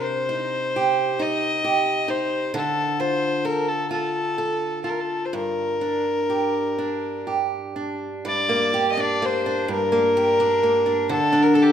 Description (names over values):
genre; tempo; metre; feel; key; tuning
celtic folk, Celtic slow air; 41-45 BPM (dotted quarters); 6/8; rubato; G minor; A4 = 440 Hz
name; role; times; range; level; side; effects
warm fiddle; melody; 0.0-11.7 s; G4 to Eb5; -22 LUFS; left 2 dB; none
picked old ladder-braced acoustic guitar; accompaniment; 0.0-11.7 s; G2 to A4; -23 LUFS; right 2 dB; none
room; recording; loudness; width
light reverb; minimal, uncompressed stereo recording; -20 LUFS; side -9 dB against mid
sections
0.0-8.3 A section; 8.3-11.7 B section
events
none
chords
0.0 Cm; 2.5 Dm; 5.3 Gm; 11.1 D5